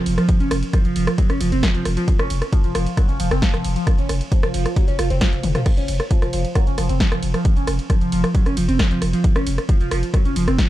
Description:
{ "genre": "driving peak-time techno", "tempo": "134 BPM", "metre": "4/4", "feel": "straight", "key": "unclear", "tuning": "A4 = 441 Hz", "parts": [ { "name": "growling 808-style bass", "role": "bass", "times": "0.0-10.6 s", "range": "F1", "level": "-23 LUFS", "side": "equal", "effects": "overdrive, sidechain pumping, low-pass filter" }, { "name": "punchy analog drum machine", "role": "drums", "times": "0.1-10.7 s", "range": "crash cymbal, hi-hat, ride cymbal, rim click, snare drum, toms", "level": "-25 LUFS", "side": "equal", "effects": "sidechain pumping on hats, sidechain pumping on cymbals, sidechain pumping on toms" }, { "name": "overdriven synth lead", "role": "riff", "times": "0.2-10.6 s", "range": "F3 to Db4", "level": "-23 LUFS", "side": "right 1 dB", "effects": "distortion, phaser, wide subtle chorus, sidechain pumping, digital delay" }, { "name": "electronic kick drum", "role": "drums", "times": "0.3-10.7 s", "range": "none", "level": "-18 LUFS", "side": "equal", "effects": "none" } ], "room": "little or no reverb", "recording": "dark, warm production", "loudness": "-17 LUFS", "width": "side -14 dB against mid", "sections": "0.0-10.7 A section", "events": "drum fill 5.4", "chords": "none", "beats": "| 0.29 0.73 1.18 1.63 | 2.08 2.52 2.97 3.42 | 3.87 4.32 4.76 5.21 | 5.66 6.11 6.55 7.00 | 7.45 7.90 8.35 8.79 | 9.24 9.69 10.14 10.58" }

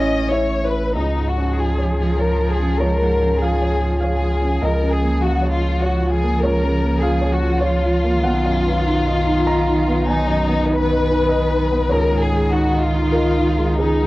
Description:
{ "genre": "neoclassical piano and strings", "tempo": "98 BPM", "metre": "3/4", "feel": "rubato", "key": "unclear", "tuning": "A4 = 440 Hz", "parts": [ { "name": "rich chamber violin section", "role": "melody", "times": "0.0-14.1 s", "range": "D#4 to D#5", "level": "-21 LUFS", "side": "left 2 dB", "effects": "cassette tape" }, { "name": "warm cello", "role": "second line", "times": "0.0-14.1 s", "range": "D#3 to C#4", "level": "-25 LUFS", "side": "right 2 dB", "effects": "cassette tape" }, { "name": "felt-muted upright piano", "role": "accompaniment", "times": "0.0-14.1 s", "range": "B1 to A#5", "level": "-22 LUFS", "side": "right 1 dB", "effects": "cassette tape" }, { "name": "pure sine sub bass", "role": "bass", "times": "0.0-14.1 s", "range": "A1 to C#2", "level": "-21 LUFS", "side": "equal", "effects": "none" } ], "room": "small room ambience", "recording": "home recording on cassette", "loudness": "-16 LUFS", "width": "side -18 dB against mid", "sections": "1.0-14.1 A section", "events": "none", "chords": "0.0 A; 1.0 C#add9; 4.6 A#m/C#; 8.2 B; 11.9 C#sus2", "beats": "0.31 | 0.96 1.58 2.19 | 2.80 3.42 4.02 | 4.63 5.23 5.83 | 6.43 7.02 7.62 | 8.25 8.87 9.47 | 10.09 10.70 11.31 | 11.91 12.52 13.14 | 13.79" }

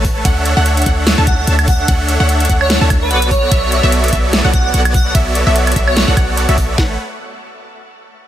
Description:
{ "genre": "future bass", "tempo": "147 BPM", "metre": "4/4", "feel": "swing 56% on 16ths, half-time", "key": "unclear", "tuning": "A4 = 440 Hz", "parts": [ { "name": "wide unison pluck", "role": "arpeggios", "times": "0.0-6.9 s", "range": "E5 to A5", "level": "-22 LUFS", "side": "equal", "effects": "sidechain pumping, dub echo" }, { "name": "supersaw chords", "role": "riff", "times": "0.0-6.9 s", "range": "A3 to A5", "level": "-18 LUFS", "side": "right 1 dB", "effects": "sidechain pumping" }, { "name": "warm 808-style bass", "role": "bass", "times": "0.0-7.0 s", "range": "A1 to D2", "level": "-15 LUFS", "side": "equal", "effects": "sidechain pumping" }, { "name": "big-room dance drum kit", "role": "drums", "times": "0.0-6.7 s", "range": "hi-hat, ride cymbal, snare drum, woodblock", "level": "-19 LUFS", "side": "right 1 dB", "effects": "none" }, { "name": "trap drum kit", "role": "drums", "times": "0.0-6.9 s", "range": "kick drum, snare drum", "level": "-15 LUFS", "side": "equal", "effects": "none" }, { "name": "airy dreamy lead", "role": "melody", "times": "1.3-6.0 s", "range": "B4 to F#5", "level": "-21 LUFS", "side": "right 1 dB", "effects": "chorus, sidechain pumping, digital delay" } ], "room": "little or no reverb", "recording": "none", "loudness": "-11 LUFS", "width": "side -12 dB against mid", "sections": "0.0-6.8 A section; 6.8-8.3 B section", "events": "drop 0.0-6.8", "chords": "0.2 Bm11; 6.8 A69", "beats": "| 0.25 0.66 1.07 1.47 | 1.88 2.29 2.70 3.11 | 3.52 3.92 4.33 4.74 | 5.15 5.56 5.96 6.37 | 6.78" }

